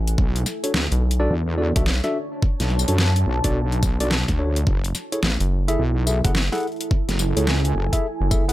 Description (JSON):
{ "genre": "glitch hop", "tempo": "107 BPM", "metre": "4/4", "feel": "swing 63% on 16ths", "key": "F# minor", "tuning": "A4 = 440 Hz", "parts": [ { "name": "rubbery square bass", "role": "bass", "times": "0.0-2.0, 5.4-8.5 s", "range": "F#1 to B1", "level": "-21 LUFS", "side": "equal", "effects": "none" }, { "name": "deep dark ambient pad", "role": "texture", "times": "0.0-8.5 s", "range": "D4 to A5", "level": "-31 LUFS", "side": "right 1 dB", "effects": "chorus, built-in reverb, sidechain pumping" }, { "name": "dubstep drum kit", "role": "drums", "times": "0.1-8.5 s", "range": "hi-hat, snare drum, tambourine", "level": "-25 LUFS", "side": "equal", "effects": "overdrive" }, { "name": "wobble bass", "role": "bass", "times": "0.2-7.9 s", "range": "F#1 to F#2", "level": "-21 LUFS", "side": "equal", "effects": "chorus" }, { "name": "electronic kick drum", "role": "drums", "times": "0.2-8.5 s", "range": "none", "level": "-21 LUFS", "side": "equal", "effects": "overdrive" }, { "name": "tine electric piano", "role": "stabs", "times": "0.6-8.5 s", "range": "D4 to F#5", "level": "-26 LUFS", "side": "equal", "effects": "sidechain pumping, tape echo" } ], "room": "little or no reverb", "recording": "none", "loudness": "-19 LUFS", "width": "side -16 dB against mid", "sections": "0.0-8.5 A section", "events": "none", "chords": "0.2 Bm9; 4.7 F#m9", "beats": "| 0.18 0.74 1.30 1.86 | 2.42 2.98 3.54 4.11 | 4.67 5.23 5.79 6.35 | 6.91 7.47 8.03" }